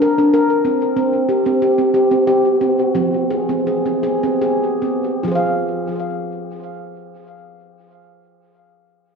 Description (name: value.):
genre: world meditative.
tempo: 71-94 BPM.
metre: 3/4.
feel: straight.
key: F minor.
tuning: A4 = 440 Hz.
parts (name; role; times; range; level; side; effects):
handpan; arpeggios; 0.0-8.6 s; F3 to F5; -15 LUFS; equal; ping-pong delay.
room: wet recital hall reverb, RT60 1.5 s, studio reverb.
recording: none.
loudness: -15 LUFS.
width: side -5 dB against mid.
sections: 0.0-5.2 A section; 5.2-9.2 B section.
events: slowing down 1.0-5.2.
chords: 0.0 Bb; 1.0 C5; 2.9 Fm.